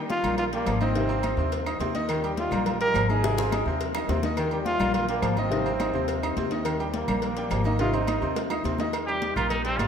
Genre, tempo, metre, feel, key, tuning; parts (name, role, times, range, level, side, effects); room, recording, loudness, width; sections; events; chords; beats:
latin, salsa; 211 BPM; 4/4; straight; Eb major; A4 = 443 Hz
mellow bass clarinet; second line; 0.0-8.8 s; C3 to G3; -31 LUFS; left 3 dB
bright upright piano; accompaniment; 0.0-9.9 s; Eb3 to Eb6; -31 LUFS; right 1 dB
clear trombone; melody; 0.1-8.5 s; Bb3 to Bb4; -29 LUFS; equal; slapback echo
congas; percussion; 0.1-9.9 s; -35 LUFS; left 2 dB
cowbell and bongos; percussion; 0.1-9.9 s; -37 LUFS; left 6 dB
timbales and agogo bells; percussion; 0.1-9.9 s; -35 LUFS; right 6 dB
upright bass; bass; 0.2-9.9 s; Ab1 to Eb2; -30 LUFS; equal
claves; percussion; 0.2-9.9 s; -43 LUFS; left 2 dB
clear trumpet; melody; 9.1-9.9 s; C4 to G4; -27 LUFS; right 1 dB
wet cathedral reverb, RT60 5.8 s; in a vast, echoing space; -23 LUFS; side -7 dB against mid
0.0-8.9 A section
drum fill 3.2-4.4, 7.8-8.9
0.0 Ebadd9; 1.0 Ab; 2.1 Ebadd9; 3.2 Ab; 4.4 Ebadd9; 5.5 Ab; 6.7 Eb; 7.8 Ab; 8.9 Eb
0.10 0.38 0.67 | 0.95 1.24 1.52 1.81 | 2.09 2.38 2.66 2.95 | 3.23 3.52 3.80 4.09 | 4.37 4.66 4.94 5.23 | 5.51 5.80 6.08 6.37 | 6.65 6.94 7.22 7.51 | 7.79 8.08 8.37 8.65 | 8.94 9.22 9.51 9.79